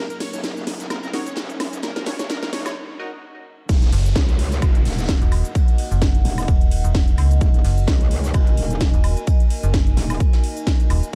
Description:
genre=bass house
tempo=129 BPM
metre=4/4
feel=swing 56% on 16ths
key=Eb minor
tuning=A4 = 440 Hz
part: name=plucky unison lead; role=melody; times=0.0-2.7 s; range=Bb4 to Db5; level=-36 LUFS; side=equal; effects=tape echo
part: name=dark analog pad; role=sustained chords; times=0.0-11.2 s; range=Gb3 to Eb5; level=-39 LUFS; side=equal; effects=chorus, phaser, sidechain pumping
part: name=metallic wobble bass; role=bass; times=0.0-10.2 s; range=Eb1 to Db2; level=-28 LUFS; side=equal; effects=distortion, chorus, sidechain pumping, high-pass filter
part: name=riser and downlifter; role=sound effects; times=0.2-7.4 s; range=none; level=-39 LUFS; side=equal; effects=none
part: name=warbly tape-like pad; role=texture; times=0.2-11.2 s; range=Eb4 to Ab5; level=-37 LUFS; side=equal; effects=chorus, built-in reverb, sidechain pumping
part: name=house drum kit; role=drums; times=0.1-11.1 s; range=crash cymbal, hi-hat, shaker, snare drum, woodblock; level=-31 LUFS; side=equal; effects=overdrive
part: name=vintage brush drum kit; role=drums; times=0.2-11.1 s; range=hi-hat, ride cymbal, snare drum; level=-42 LUFS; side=equal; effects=sidechain pumping on hats, high-pass filter on hats, sidechain pumping on cymbals, high-pass filter on cymbals, high-pass filter on snare, high-pass filter on room
part: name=band-passed chord stab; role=stabs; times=1.1-3.1 s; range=Eb4 to Eb5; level=-36 LUFS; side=equal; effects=chorus, sidechain pumping, tape echo
part: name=electronic kick drum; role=drums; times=3.7-10.8 s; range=none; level=-19 LUFS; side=equal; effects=overdrive
part: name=metallic FM bass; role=bass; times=3.9-11.0 s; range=Eb1 to Db2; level=-20 LUFS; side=equal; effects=overdrive, sidechain pumping
room=digital ambience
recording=dark, warm production, high-pass filter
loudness=-19 LUFS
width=mono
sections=0.0-3.7 A section; 3.7-11.2 B section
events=build-up 0.0-3.7; drum fill 0.0-2.8; filter sweep on synth stab 0.0-3.7; break 2.8-3.7; drop 3.7-11.2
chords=0.0 Ebm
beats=0.44 0.90 1.37 | 1.83 2.30 2.76 3.23 | 3.69 4.16 4.62 5.09 | 5.55 6.02 6.48 6.95 | 7.41 7.88 8.34 8.81 | 9.27 9.74 10.20 10.67 | 11.13

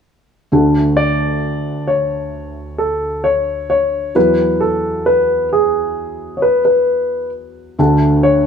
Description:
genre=pop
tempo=66 BPM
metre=4/4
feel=straight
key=D lydian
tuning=A4 = 440 Hz
part: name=felt-muted upright piano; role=accompaniment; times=0.5-8.5 s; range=D2 to F#4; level=-17 LUFS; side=equal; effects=none
part: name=warm grand piano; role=melody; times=1.0-8.5 s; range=G#4 to D5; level=-15 LUFS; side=left 1 dB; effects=none
room=moderate stone room reverb, RT60 1.1 s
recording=band playing live in one room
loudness=-13 LUFS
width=side -7 dB against mid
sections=0.5-8.5 A section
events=none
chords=0.5 Dmaj7; 4.2 Eadd9; 7.8 Dmaj7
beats=| 0.52 1.43 2.33 3.24 | 4.15 5.06 5.97 6.88 | 7.79

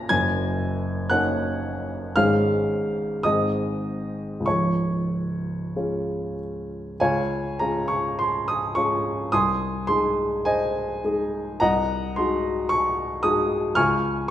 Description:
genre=classical, romantic character piece for solo piano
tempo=46-61 BPM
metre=2/4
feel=rubato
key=Db major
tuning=A4 = 438 Hz
part: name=warm upright piano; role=solo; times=0.0-14.3 s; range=Db1 to Bb6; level=-22 LUFS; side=equal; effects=none
room=wet recital hall reverb, RT60 1.6 s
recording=minimal, uncompressed stereo recording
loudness=-22 LUFS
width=side -11 dB against mid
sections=0.0-7.0 A section; 7.0-14.3 B section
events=none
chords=0.1 Ebm7/Gb; 2.1 Db/Ab; 3.2 Ab; 4.5 Db; 9.3 Ab/C; 11.6 Ab7/C; 13.8 Db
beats=| 0.08 1.09 | 2.14 3.23 | 4.45 5.74 | 6.99 8.18 | 9.31 10.45 | 11.61 12.70 | 13.77

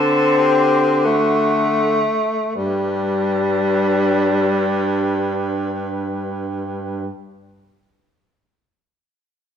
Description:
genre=classical, lyrical piece for single-reed quartet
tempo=free time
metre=none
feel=none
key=G major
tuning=A4 = 440 Hz
part: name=warm clarinet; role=melody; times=0.0-7.1 s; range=B4 to A5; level=-27 LUFS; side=left 9 dB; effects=none
part: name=bright clarinet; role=second line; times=0.0-7.1 s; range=D4 to A4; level=-26 LUFS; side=right 8 dB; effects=none
part: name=mellow tenor saxophone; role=accompaniment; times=0.0-7.1 s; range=G3 to C4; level=-19 LUFS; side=left 2 dB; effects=none
part: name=warm baritone saxophone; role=bass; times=0.0-7.1 s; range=G2 to D3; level=-22 LUFS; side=right 2 dB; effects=none
room=moderate recital hall reverb, RT60 1.3 s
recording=minimal, uncompressed stereo recording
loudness=-16 LUFS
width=side -8 dB against mid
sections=0.0-2.5 A section; 2.5-6.7 B section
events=slowing down 0.0-2.5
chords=0.0 D7sus4; 1.1 D; 2.5 G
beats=free time

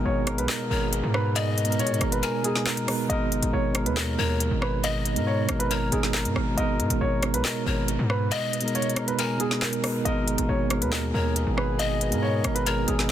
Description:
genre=hip hop, drill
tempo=138 BPM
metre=4/4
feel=half-time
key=G# minor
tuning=A4 = 439 Hz
part: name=dark baby grand piano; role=melody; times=0.0-13.1 s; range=G#4 to D#5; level=-30 LUFS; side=equal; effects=low-pass filter, tape echo
part: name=tine electric piano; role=accompaniment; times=0.0-13.1 s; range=B2 to B4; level=-28 LUFS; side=right 3 dB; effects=medium stereo tremolo, low-pass filter
part: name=mellow French horn section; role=sustained chords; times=0.0-3.1, 10.1-13.1 s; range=B2 to G#4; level=-37 LUFS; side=left 3 dB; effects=none
part: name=distorted 808-style bass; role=bass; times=0.0-13.1 s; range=G1 to B2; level=-27 LUFS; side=left 1 dB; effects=distortion
part: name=drill drum kit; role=drums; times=0.3-13.1 s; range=handclaps, hi-hat, rim click, snare drum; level=-30 LUFS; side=left 1 dB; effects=none
part: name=breathy pan flute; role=second line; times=0.5-13.1 s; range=C#5 to G#5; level=-34 LUFS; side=left 7 dB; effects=tape echo
room=small room ambience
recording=dense, heavily limited modern master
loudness=-22 LUFS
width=side -11 dB against mid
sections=0.0-3.1 A section; 3.1-13.1 A section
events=kick muted 2.2-3.1, 8.3-10.1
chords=0.0 G#madd9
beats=0.06 0.49 0.92 | 1.36 1.79 2.23 2.66 | 3.10 3.53 3.97 4.40 | 4.84 5.27 5.71 6.14 | 6.58 7.01 7.45 7.88 | 8.31 8.75 9.19 9.62 | 10.05 10.49 10.92 11.36 | 11.79 12.23 12.66 13.10

